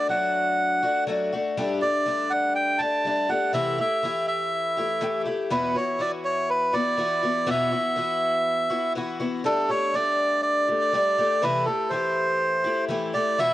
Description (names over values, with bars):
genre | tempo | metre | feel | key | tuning
rock | 122 BPM | 4/4 | straight | unclear | A4 = 442 Hz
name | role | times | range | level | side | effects
melodica | melody | 0.0-13.5 s | A4 to A5 | -23 LUFS | right 1 dB | cassette tape, analog delay
picked twelve-string acoustic guitar | accompaniment | 0.0-13.5 s | E2 to G4 | -27 LUFS | left 2 dB | cassette tape
room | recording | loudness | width
light reverb | home recording on cassette | -22 LUFS | side -15 dB against mid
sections
0.0-9.4 A section; 9.4-13.5 A section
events
none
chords
0.0 D/F#; 1.6 Gsus2; 3.5 C6; 5.5 Esus2; 9.4 Gsus2; 11.4 C6